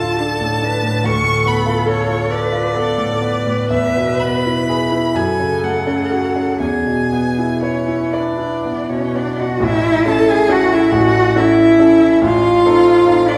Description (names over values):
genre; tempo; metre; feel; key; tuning
classical, slow romantic movement for piano trio; 38-49 BPM (dotted quarters); 6/8; rubato; A major; A4 = 442 Hz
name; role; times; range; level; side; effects
clear violin; melody; 0.0-13.4 s; C#5 to C#6; -24 LUFS; equal; none
warm cello; second line; 0.0-13.4 s; C#4 to B4; -19 LUFS; equal; none
clear grand piano; accompaniment; 0.0-13.4 s; A1 to B4; -19 LUFS; equal; none
room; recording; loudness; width
wet recital hall reverb, RT60 1.7 s; heard from further back in the room; -15 LUFS; mono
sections
0.0-9.6 A section; 9.6-13.4 B section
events
none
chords
0.0 Dm; 1.0 Bm7b5/D; 3.7 E; 5.2 F#m; 6.6 E; 9.6 A; 12.2 Adim